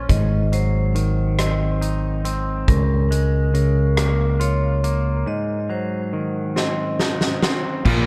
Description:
post-rock; 46 BPM (dotted quarters); 6/8; straight; A4 = 441 Hz
twangy electric guitar; arpeggios; 0.0-8.1 s; Ab2 to F4; -28 LUFS; equal; analog delay
vibraphone with medium hard mallets; arpeggios; 0.0-8.1 s; Bb4 to Eb5; -30 LUFS; equal; analog delay
fingered electric bass; bass; 0.0-8.1 s; Ab1 to Db2; -22 LUFS; equal
huge arena drum kit; drums; 0.1-8.1 s; crash cymbal, hi-hat, kick drum, rim click, snare drum; -24 LUFS; equal
overdriven semi-hollow guitar; riff; 7.9-8.1 s; Bb2 to Bb3; -22 LUFS; equal
light reverb; dark, warm production; -21 LUFS; mono
0.0-7.9 A section
break 5.3-7.9; drum fill 6.6-7.9
0.1 Ab7; 2.7 Db6; 5.3 Ab7
| 0.10 1.39 | 2.69 3.98 | 5.27 6.57 | 7.86

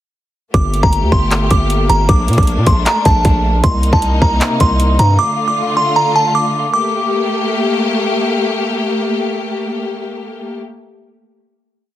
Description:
hip hop, trap; 155 BPM; 4/4; half-time; G minor; A4 = 441 Hz
delicate synth tine bell; melody; 0.5-7.9 s; A5 to D6; -16 LUFS; right 1 dB; chorus
clear studio string section; sustained chords; 0.5-10.6 s; C3 to G4; -18 LUFS; left 2 dB
distorted 808-style bass; bass; 0.5-5.2 s; G1 to Bb2; -14 LUFS; equal; distortion
trap drum kit; drums; 0.5-5.1 s; handclaps, hi-hat, kick drum; -14 LUFS; equal
little or no reverb; heavily compressed radio sound, multiband compression; -12 LUFS; side -13 dB against mid
0.5-6.7 hook; 6.7-9.8 final chord
0.5 Gmadd9; 2.1 Bbmaj7; 3.6 Cm7; 5.2 Dm; 6.7 Gmadd9
| 0.54 0.93 1.31 1.70 | 2.09 2.48 2.86 3.25 | 3.64 4.02 4.41 4.80 | 5.18 5.57 5.96 6.35 | 6.73 7.12 7.51 7.89 | 8.28 8.67 9.06 9.44

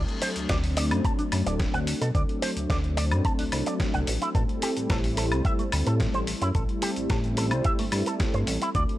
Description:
nu-disco, nu disco; 109 BPM; 4/4; straight; A dorian; A4 = 444 Hz
chorused synth bass; bass; 0.0-8.9 s; D1 to B2; -27 LUFS; equal
dusty soul sampler-style drum kit; drums; 0.1-9.0 s; hi-hat, shaker, snare drum, woodblock; -32 LUFS; left 1 dB; small room ambience
electric guitar with an envelope filter; riff; 0.2-8.8 s; A3 to A5; -32 LUFS; right 2 dB; analog chorus
electronic kick drum; drums; 0.5-8.9 s; -27 LUFS; equal; small room ambience
little or no reverb; -23 LUFS; side -15 dB against mid
0.0-9.0 A section
0.0 D7; 4.1 Am7
0.49 1.04 1.59 | 2.15 2.70 3.25 3.80 | 4.35 4.90 5.45 6.00 | 6.55 7.10 7.65 8.20 | 8.75

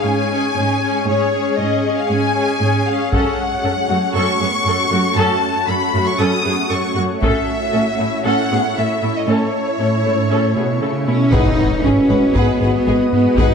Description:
cinematic, hybrid orchestral and electronic film score; 117 BPM; 4/4; straight; G# phrygian; A4 = 441 Hz
rich symphonic violin section; melody; 0.0-13.5 s; C#5 to D#6; -20 LUFS; left 3 dB
rich chamber viola section; accompaniment; 0.0-13.5 s; A3 to A4; -23 LUFS; equal
shimmering ambient pad; sustained chords; 0.0-13.5 s; G#3 to D#5; -22 LUFS; equal; chorus, built-in reverb
rich symphonic cello section; bass; 0.0-13.5 s; F#2 to D#4; -20 LUFS; right 2 dB
solo taiko drums; drums; 3.1-4.1, 7.2-8.2, 11.3-13.5 s; -21 LUFS; equal
warm symphonic violin section; second line; 11.3-13.5 s; G#4 to B4; -25 LUFS; left 6 dB
mellow French horn section; sustained chords; 11.3-13.5 s; F#4 to B4; -23 LUFS; left 5 dB
round analog bass; riff; 11.3-13.5 s; G#2 to G#3; -21 LUFS; left 2 dB
rich symphonic double bass section; bass; 11.3-13.5 s; G#1; -24 LUFS; right 3 dB
impact; sound effects; 11.3-13.4 s; -27 LUFS; equal
moderate scoring stage reverb, RT60 2.0 s; dark, warm production; -14 LUFS; side -6 dB against mid
0.0-11.3 A section; 11.3-13.5 B section
impact 11.3-13.4
0.0 C#5/G#; 3.1 F#m; 7.2 A; 11.3 G#m7
0.04 0.56 | 1.07 1.58 2.10 2.61 | 3.12 3.63 4.15 4.66 | 5.17 5.68 6.20 6.71 | 7.22 7.74 8.25 8.76 | 9.27 9.79 10.30 10.81 | 11.33 11.84 12.35 12.86 | 13.38

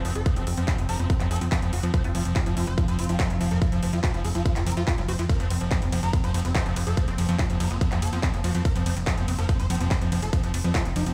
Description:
psychedelic trance; 143 BPM; 4/4; straight; A4 = 440 Hz
evolving wavetable pad; sustained chords; 0.0-11.1 s; F3 to C4; -36 LUFS; equal; chorus, built-in reverb, sidechain pumping
overdriven acid bass; riff; 0.0-11.1 s; F3 to Gb4; -35 LUFS; equal; sidechain pumping, dub echo
plucky analog bass; bass; 0.0-11.1 s; F1 to F2; -28 LUFS; equal
big-room dance drum kit; drums; 0.0-11.1 s; handclaps, hi-hat, ride cymbal; -36 LUFS; equal
swarming rave lead; melody; 0.1-11.1 s; C4 to C5; -37 LUFS; equal; chorus, phaser, sidechain pumping, digital delay
electronic kick drum; drums; 0.3-10.8 s; -27 LUFS; equal
resonant blip pluck; second line; 0.4-10.7 s; F3 to C4; -46 LUFS; equal
digital ambience; played on a big sound system in a bare room, stone room reverb; -25 LUFS; mono
0.0-11.1 A section
0.0 F5
| 0.26 0.68 1.10 1.52 | 1.94 2.36 2.78 3.20 | 3.62 4.04 4.46 4.88 | 5.29 5.71 6.13 6.55 | 6.97 7.39 7.81 8.23 | 8.65 9.07 9.49 9.91 | 10.33 10.75

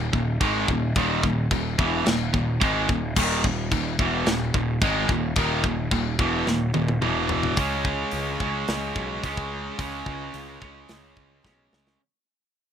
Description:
heavy metal; 109 BPM; 4/4; straight; A4 = 440 Hz
high-gain distorted guitar; riff; 0.0-12.0 s; Eb2 to Db4; -25 LUFS; right 1 dB; distortion
fuzz picked electric bass; bass; 0.0-12.0 s; Eb1 to Db2; -29 LUFS; equal; overdrive
tight metal drum kit; drums; 0.1-12.0 s; china cymbal, crash cymbal, hi-hat, kick drum, snare drum, toms; -26 LUFS; left 1 dB
small room ambience; rough home demo mix; -22 LUFS; side -8 dB against mid
0.0-7.6 A section; 7.6-12.0 B section
drum fill 6.5-7.6, 11.4-12.0; fade-out 7.6-12.0
0.0 Eb5; 7.0 E5; 7.6 Db5
0.41 | 0.96 1.51 2.06 2.61 | 3.17 3.72 4.27 4.82 | 5.37 5.92 6.47 7.03 | 7.58 8.13 8.68 9.23 | 9.79 10.34 10.89 11.45

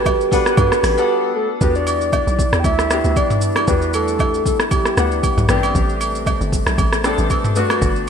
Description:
amapiano; 116 BPM; 4/4; swing 55% on 16ths; A4 = 435 Hz
soft octave-layered synth lead; melody; 0.0-5.5 s; G4 to G5; -22 LUFS; left 1 dB; chorus, digital delay
warm grand piano; accompaniment; 0.0-8.1 s; A3 to F#5; -23 LUFS; left 4 dB; lush chorus
mellow French horn section; sustained chords; 0.0-8.1 s; C3 to B4; -24 LUFS; right 2 dB; stereo widening
marimba with medium mallets; stabs; 0.0-1.1 s; F#4 to B4; -26 LUFS; right 6 dB; digital delay
hollow log drum bass; bass; 0.0-8.1 s; G1 to G2; -21 LUFS; equal
smooth R&B drum kit; drums; 0.1-8.1 s; hi-hat, kick drum, rim click, shaker, toms; -19 LUFS; equal; overdrive, vintage 12-bit sampler grit, gated reverb
agogo bells and woodblock; percussion; 0.1-7.8 s; -26 LUFS; right 4 dB
moderate lush hall reverb, RT60 1.8 s, small room ambience; bright 1980s-style digital production; -15 LUFS; side -7 dB against mid
0.0-1.6 A section; 1.6-8.1 B section
drop 0.0-1.6; break 1.1-1.6
0.0 Gmaj9; 1.6 Em9; 5.5 Am11; 7.6 Gmaj9
0.06 0.57 1.09 | 1.61 2.13 2.64 3.16 | 3.68 4.20 4.71 5.23 | 5.75 6.26 6.78 7.30 | 7.82

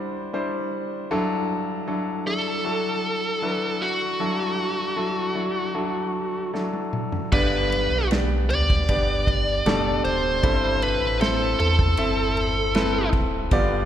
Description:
pop ballad; 78 BPM; 4/4; straight; G major; A4 = 442 Hz
clear concert grand piano; accompaniment; 0.0-13.9 s; G2 to E5; -26 LUFS; left 1 dB
bluesy overdriven lead guitar; melody; 2.3-13.1 s; F#4 to D5; -24 LUFS; equal; distortion
modern studio drum kit; drums; 6.5-13.7 s; crash cymbal, kick drum, ride cymbal, snare drum, toms; -26 LUFS; right 1 dB
sub bass with octave; bass; 7.3-13.9 s; D1 to E2; -26 LUFS; right 1 dB
wet church reverb, RT60 3.7 s; recorded in a church or concert hall; -21 LUFS; side -10 dB against mid
0.0-7.3 A section; 7.3-13.9 B section
drum fill 6.5-7.3
0.0 Cadd9/G; 1.1 Dadd9/G; 7.3 G; 10.4 Am/G
0.33 | 1.10 1.87 2.64 3.42 | 4.19 4.97 5.75 6.54 | 7.33 8.11 8.89 9.66 | 10.44 11.21 11.98 12.75 | 13.52

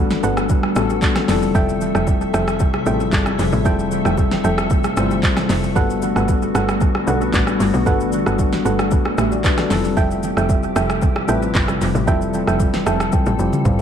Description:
amapiano; 114 BPM; 4/4; straight; A4 = 439 Hz
mellow tine electric piano; accompaniment; 0.0-13.8 s; G3 to A5; -21 LUFS; left 4 dB; analog delay
glassy FM pad; sustained chords; 0.0-13.8 s; C3 to E5; -25 LUFS; equal; ensemble chorus, built-in reverb, sidechain pumping
soft round pluck; stabs; 0.0-13.1 s; A4 to G5; -25 LUFS; right 6 dB; chorus, analog delay
tight log drum bass; bass; 0.0-13.8 s; F1 to B1; -22 LUFS; equal
smooth R&B drum kit; drums; 0.1-13.8 s; handclaps, hi-hat, kick drum, rim click, shaker, snare drum, toms; -20 LUFS; equal; analog delay
bongos and congas; percussion; 0.2-13.8 s; -32 LUFS; right 4 dB
light reverb, digital ambience; echo-heavy mix; -15 LUFS; side -8 dB against mid
0.0-13.8 A section
tine electric piano fill 12.6-13.8; drum fill 13.1-13.8
0.0 Gmaj9; 1.3 Fmaj9; 5.8 Gmaj9; 9.7 Fmaj9
0.49 1.02 | 1.55 2.07 2.60 3.13 | 3.65 4.18 4.71 5.23 | 5.76 6.28 6.81 7.34 | 7.86 8.39 8.92 9.44 | 9.97 10.49 11.02 11.55 | 12.07 12.60 13.13 13.65

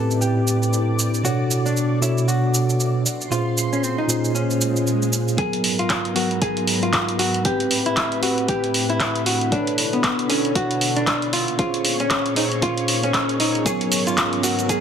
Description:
deep house; 116 BPM; 4/4; swing 59% on 16ths; A4 = 440 Hz
vintage hollow-body jazz guitar; melody; 0.0-14.8 s; B3 to A4; -24 LUFS; equal; dub echo
soft string machine; sustained chords; 0.0-14.8 s; G#2 to C#6; -29 LUFS; equal; ensemble chorus, sidechain pumping
mellow tine electric piano; stabs; 0.0-14.8 s; A2 to C#5; -23 LUFS; equal; medium stereo tremolo, sidechain pumping, low-pass filter, tape echo
analog string pad; texture; 0.0-14.8 s; B4 to B#5; -33 LUFS; left 2 dB; ensemble chorus, sidechain pumping
deep dark ambient pad; texture; 0.7-14.8 s; B3 to A#5; -34 LUFS; right 1 dB
punchy analog drum machine; drums; 0.1-14.8 s; handclaps, hi-hat, shaker; -23 LUFS; right 1 dB
swell and riser; sound effects; 4.6-5.4, 14.6-14.8 s; -32 LUFS; left 5 dB
electronic kick drum; drums; 5.4-14.8 s; -26 LUFS; equal; overdrive, high-pass filter on kick
light reverb; -18 LUFS; side -8 dB against mid
0.0-5.4 A section; 5.4-14.8 B section
filter sweep on string machine 0.0-5.4; swell 4.6-5.4; build-up 5.4-14.8
0.0 Am9; 1.2 Bm9; 3.1 A#m9; 5.4 G#m9; 7.5 Am9; 9.5 Bm9; 11.3 A#m9; 13.7 G#m9
0.21 0.73 | 1.25 1.76 2.28 2.80 | 3.31 3.83 4.35 4.87 | 5.38 5.90 6.42 6.93 | 7.45 7.97 8.49 9.00 | 9.52 10.04 10.55 11.07 | 11.59 12.11 12.62 13.14 | 13.66 14.18 14.69

